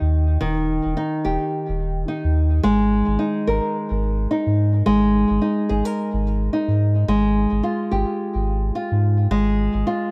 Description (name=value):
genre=folktronica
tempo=108 BPM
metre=4/4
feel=swing 56% on 16ths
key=unclear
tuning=A4 = 440 Hz
part: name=nylon-string guitar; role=arpeggios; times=0.0-10.1 s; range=Eb3 to Bb4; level=-23 LUFS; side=equal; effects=tape echo
part: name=warm sub bass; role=bass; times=0.0-9.8 s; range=Eb1 to Ab2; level=-22 LUFS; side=equal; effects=none
room=small room ambience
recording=none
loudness=-21 LUFS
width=mono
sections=0.0-10.1 A section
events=none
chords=0.0 Eb; 2.6 Absus2; 7.1 Fmadd9/Ab